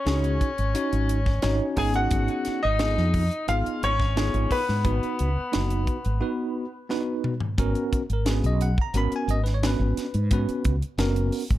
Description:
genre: electric jazz fusion.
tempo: 88 BPM.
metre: 4/4.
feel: straight.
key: G# minor.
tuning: A4 = 441 Hz.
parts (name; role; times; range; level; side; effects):
bright grand piano; melody; 0.0-6.9 s; B4 to G#5; -30 LUFS; left 1 dB; tape echo.
clear tenor saxophone; second line; 0.0-6.9 s; B3 to G#4; -31 LUFS; left 4 dB; none.
bell-like tine electric piano; accompaniment; 0.1-11.4 s; B3 to B5; -28 LUFS; right 1 dB; medium stereo tremolo.
mellow fretless electric bass; bass; 0.1-11.6 s; F#1 to G#2; -24 LUFS; equal; analog chorus.
crisp fusion drum kit; drums; 0.1-11.6 s; hi-hat, kick drum, snare drum, toms; -28 LUFS; equal; none.
room: little or no reverb.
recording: none.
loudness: -22 LUFS.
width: side -14 dB against mid.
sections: 0.0-7.6 A section; 7.6-11.6 B section.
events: break 6.2-7.6; drum fill 6.9-7.6.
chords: 0.0 D#m7; 1.8 C#7/G#; 4.9 G#m7; 7.6 G#m11.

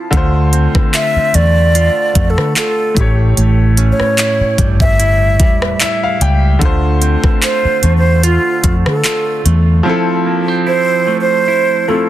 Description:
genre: contemporary R&B.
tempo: 74 BPM.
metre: 4/4.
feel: swing 54% on 16ths.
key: D minor.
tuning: A4 = 440 Hz.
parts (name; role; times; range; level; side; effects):
bright grand piano; accompaniment; 0.0-12.1 s; A2 to G5; -19 LUFS; left 3 dB; none.
semi-hollow electric guitar; arpeggios; 0.1-12.1 s; A2 to F4; -20 LUFS; right 7 dB; digital delay.
vintage muted fingered electric bass; bass; 0.1-9.8 s; E1 to D3; -12 LUFS; equal; none.
trap drum kit; drums; 0.1-9.7 s; handclaps, hi-hat, kick drum, rim click; -15 LUFS; equal; overdrive.
breathy mellow silver concert flute; melody; 0.9-12.1 s; F4 to E5; -16 LUFS; right 1 dB; digital delay.
room: little or no reverb.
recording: dense, heavily limited modern master.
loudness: -10 LUFS.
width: side -13 dB against mid.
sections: 0.0-12.1 A section.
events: grand piano fill 5.4-6.6; silent gap 9.9-12.1.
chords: 0.1 Dm7; 3.0 A7; 6.6 Dm7; 9.9 Fmaj7.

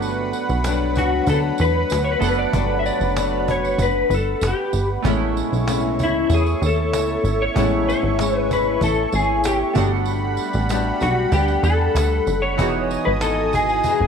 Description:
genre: indie pop, bedroom pop.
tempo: 95 BPM.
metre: 4/4.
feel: straight.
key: unclear.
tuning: A4 = 441 Hz.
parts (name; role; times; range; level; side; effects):
chorused retro synth keys; accompaniment; 0.0-14.1 s; E3 to F#5; -27 LUFS; right 14 dB; cassette tape.
flamenco guitar; accompaniment; 0.0-14.1 s; G2 to G#4; -26 LUFS; left 12 dB; lush chorus, vibrato effect.
warm analog pad; sustained chords; 0.0-14.1 s; G3 to D#6; -28 LUFS; right 1 dB; chorus.
plucky analog bass; bass; 0.0-14.1 s; E1 to E2; -22 LUFS; right 1 dB; none.
cajon; drums; 0.0-14.1 s; none; -28 LUFS; right 1 dB; none.
tambourine; percussion; 0.0-14.0 s; none; -37 LUFS; right 14 dB; none.
electric guitar through a small old amp; melody; 1.0-14.1 s; E4 to E5; -22 LUFS; left 2 dB; ensemble chorus, slapback echo.
room: light reverb, studio reverb.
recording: 1960s-style stereo with parts hard left and right.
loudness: -17 LUFS.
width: side -6 dB against mid.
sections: 0.0-14.1 A section.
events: none.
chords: 0.0 Gmaj7; 5.0 Amaj7; 9.8 Gmaj7; 12.6 Emaj7.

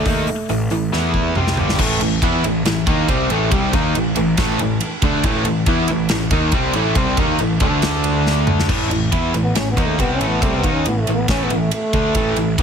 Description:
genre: hard rock.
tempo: 139 BPM.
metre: 4/4.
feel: straight.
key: unclear.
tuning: A4 = 438 Hz.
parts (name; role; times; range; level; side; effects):
mellow trombone; melody; 0.0-1.4, 9.4-12.6 s; A3 to C#4; -23 LUFS; equal; analog delay.
overdriven electric guitar; riff; 0.0-12.6 s; G2 to E4; -20 LUFS; right 1 dB; none.
fuzz picked electric bass; bass; 0.0-12.6 s; G1 to E2; -22 LUFS; equal; overdrive.
big rock drum kit; drums; 0.1-12.6 s; crash cymbal, hi-hat, kick drum, ride cymbal, snare drum, toms; -21 LUFS; equal; none.
overdriven electric guitar; riff; 1.8-8.7 s; A2 to E4; -22 LUFS; equal; none.
room: light reverb, small room ambience.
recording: heavily compressed radio sound.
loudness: -15 LUFS.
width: side -7 dB against mid.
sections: 0.0-1.8 A section; 1.8-8.7 B section; 8.7-12.6 C section.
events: drum fill 0.9-1.8, 8.3-8.7; trombone solo 8.7-12.6.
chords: 0.0 A5; 0.9 E5; 1.4 Gsus4; 1.8 A5; 7.6 D5; 8.7 A5.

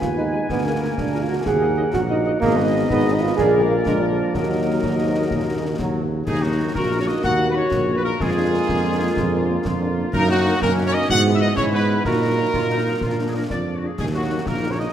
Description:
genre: military-style march for wind band.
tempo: 124 BPM (dotted quarters).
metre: 6/8.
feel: straight.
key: Eb minor.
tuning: A4 = 438 Hz.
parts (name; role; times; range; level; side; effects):
clear woodwind section; second line; 0.0-14.9 s; B3 to Ab5; -27 LUFS; left 2 dB; none.
warm euphonium; second line; 0.0-14.9 s; F3 to Ab4; -24 LUFS; right 3 dB; none.
warm trombone section; sustained chords; 0.0-14.9 s; Ab2 to Eb4; -29 LUFS; right 2 dB; none.
mellow tuba; bass; 0.0-14.9 s; Ab1 to Bb2; -23 LUFS; right 1 dB; none.
concert snare drum, concert bass drum and clash cymbals; drums; 0.0-14.9 s; none; -29 LUFS; left 2 dB; none.
clear trumpet section; melody; 0.2-14.9 s; Gb4 to Gb5; -25 LUFS; equal; none.
mellow French horn section; accompaniment; 0.2-14.8 s; Gb3 to Ab4; -29 LUFS; left 4 dB; none.
room: moderate concert hall reverb, RT60 1.8 s.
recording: none.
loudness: -18 LUFS.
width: side -10 dB against mid.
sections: 0.0-6.3 A section; 6.3-14.9 A section.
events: none.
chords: 0.5 Bb7/D; 1.5 Ebm; 2.4 Abm; 3.4 Bb; 4.3 Ebm; 8.2 Bb7/F; 10.1 Ebm/Gb; 11.1 E/G#; 12.1 Ebm/Bb; 13.0 Bb; 14.0 Ebm.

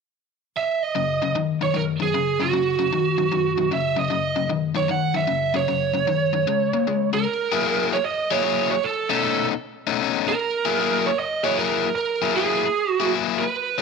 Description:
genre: blues.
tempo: 152 BPM.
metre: 4/4.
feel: swing 65% on 8ths.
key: F# mixolydian.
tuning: A4 = 440 Hz.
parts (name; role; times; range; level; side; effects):
biting lead guitar; melody; 0.6-13.8 s; F#4 to F#5; -22 LUFS; right 7 dB; overdrive, slapback echo.
overdriven electric guitar; riff; 1.0-13.8 s; F#2 to G#4; -24 LUFS; left 11 dB; none.
room: moderate echo chamber reverb, RT60 2.2 s.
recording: 1960s-style stereo with parts hard left and right.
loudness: -20 LUFS.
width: side -5 dB against mid.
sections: 0.9-7.3 A section; 7.3-13.8 B section.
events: none.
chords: 0.0 N.C.; 0.9 F#5; 6.5 C#5; 7.3 F#9; 8.8 B9; 10.4 F#9.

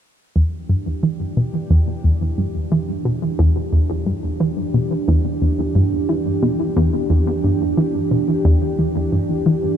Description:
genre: ambient.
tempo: 89 BPM.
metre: 4/4.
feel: straight.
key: E minor.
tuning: A4 = 440 Hz.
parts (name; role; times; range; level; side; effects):
sweeping resonant pad; sustained chords; 0.4-9.8 s; E3 to G4; -23 LUFS; right 2 dB; chorus.
analog pluck; riff; 0.4-9.6 s; E2 to E3; -17 LUFS; equal; chorus, analog delay.
room: wet huge ambient reverb, RT60 8.6 s.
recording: dark, warm production.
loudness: -16 LUFS.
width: side -9 dB against mid.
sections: 0.4-9.8 A section.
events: fade-in on analog synth pad 0.4-9.8; filter sweep on synth arpeggio sound 0.4-9.8.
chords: 0.4 Em7.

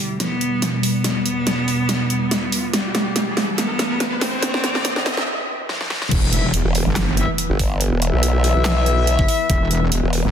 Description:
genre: heavy wobble dubstep.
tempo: 142 BPM.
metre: 4/4.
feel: swing 54% on 16ths, half-time.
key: E minor.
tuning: A4 = 437 Hz.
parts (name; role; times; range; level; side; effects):
rich cello; melody; 0.0-5.3 s; G3 to C4; -24 LUFS; equal; dub echo.
evolving wavetable pad; sustained chords; 0.0-10.3 s; C2 to B4; -26 LUFS; equal; ensemble chorus, built-in reverb, sidechain pumping.
riser and impact; sound effects; 0.0-7.8 s; none; -28 LUFS; equal; none.
dubstep drum kit; drums; 0.2-10.2 s; crash cymbal, handclaps, hi-hat, snare drum; -22 LUFS; equal; overdrive.
wobble bass; bass; 6.1-10.3 s; E1 to G1; -20 LUFS; equal; chorus, overdrive.
electronic kick drum; drums; 6.1-9.6 s; none; -20 LUFS; equal; overdrive.
warm brass ensemble; stabs; 6.3-9.8 s; E4 to E5; -24 LUFS; left 6 dB; dub echo.
formant-sweep wobble bass; bass; 6.7-10.2 s; E1 to B1; -18 LUFS; equal; chorus, overdrive.
room: moderate lush hall reverb, RT60 2.3 s.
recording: dense, heavily limited modern master, high-pass filter.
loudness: -17 LUFS.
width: side -8 dB against mid.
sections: 0.0-6.1 A section; 6.1-10.3 B section.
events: build-up 0.0-6.1; drum fill 0.0-5.3, 5.7-6.1; riser 0.0-5.3; break 5.3-6.1; drop 6.1-10.3; impact 6.1-7.8.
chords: 0.0 Em; 2.7 C; 4.4 Dsus2; 6.1 E5.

